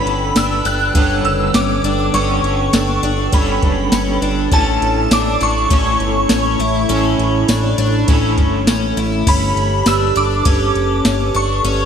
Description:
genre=dream pop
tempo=101 BPM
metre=4/4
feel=straight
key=G lydian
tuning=A4 = 439 Hz
part: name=shimmering bell with halo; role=melody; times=0.0-11.9 s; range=A5 to F#6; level=-20 LUFS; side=equal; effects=ensemble chorus, ping-pong delay
part: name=electric guitar at the edge of break-up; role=accompaniment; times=0.0-9.8 s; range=A2 to A4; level=-23 LUFS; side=right 1 dB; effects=tremolo, lush chorus
part: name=warbly tape-like pad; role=sustained chords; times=0.0-11.9 s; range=D3 to B5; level=-22 LUFS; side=right 3 dB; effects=chorus, built-in reverb
part: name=picked twelve-string acoustic guitar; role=arpeggios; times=0.0-11.9 s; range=C#4 to E4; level=-21 LUFS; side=left 4 dB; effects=lush chorus, ping-pong delay
part: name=fat analog bass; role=bass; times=0.0-11.9 s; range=F#1 to A1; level=-20 LUFS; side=equal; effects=none
part: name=soft vintage rhythm box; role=drums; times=0.1-11.8 s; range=crash cymbal, kick drum, ride cymbal, snare drum, tambourine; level=-18 LUFS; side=equal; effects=overdrive, gated reverb
room=moderate lush hall reverb, RT60 1.8 s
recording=bright 1980s-style digital production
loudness=-13 LUFS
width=side -8 dB against mid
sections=0.0-9.3 A section; 9.3-11.9 B section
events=none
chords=0.0 Gadd9; 4.5 A; 9.3 Gadd9

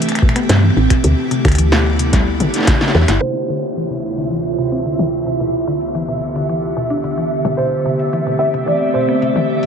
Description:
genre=IDM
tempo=110 BPM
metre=4/4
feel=straight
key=D dorian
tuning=A4 = 438 Hz
part: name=icy glass pad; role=sustained chords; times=0.0-9.7 s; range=D2 to C#5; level=-19 LUFS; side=right 1 dB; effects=chorus, built-in reverb, tremolo
part: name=mallet-like synth pluck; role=arpeggios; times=0.0-9.7 s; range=B2 to E4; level=-23 LUFS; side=left 2 dB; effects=chorus, ping-pong delay
part: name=electro analog drum machine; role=drums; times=0.0-9.7 s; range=finger snaps, hi-hat, snare drum, toms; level=-20 LUFS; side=left 1 dB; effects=ping-pong delay
part: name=electronic kick drum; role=drums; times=0.2-2.8 s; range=none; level=-15 LUFS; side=equal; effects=none
part: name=woody FM bass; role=bass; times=0.5-3.2 s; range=G1 to G2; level=-14 LUFS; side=equal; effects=none
part: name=felt-muted upright piano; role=melody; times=3.2-9.4 s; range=C5 to E5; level=-22 LUFS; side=right 2 dB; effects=ping-pong delay
part: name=flickering grainy texture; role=texture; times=4.0-9.7 s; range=E5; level=-24 LUFS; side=right 1 dB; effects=built-in reverb
room=moderate huge ambient reverb, RT60 7.6 s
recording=dreamy mix soaked in reverb, low-pass filter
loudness=-14 LUFS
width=side -7 dB against mid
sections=0.0-3.2 A section; 3.2-9.7 B section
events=drum fill 2.4-3.2; band accent 3.1; filter sweep on synth arpeggio sound 3.2-9.7; filter sweep 3.2-9.7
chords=0.0 Am9; 1.0 Cmaj7/D; 2.1 A7; 3.2 Dm9; 5.4 Em7/D; 7.6 Am9

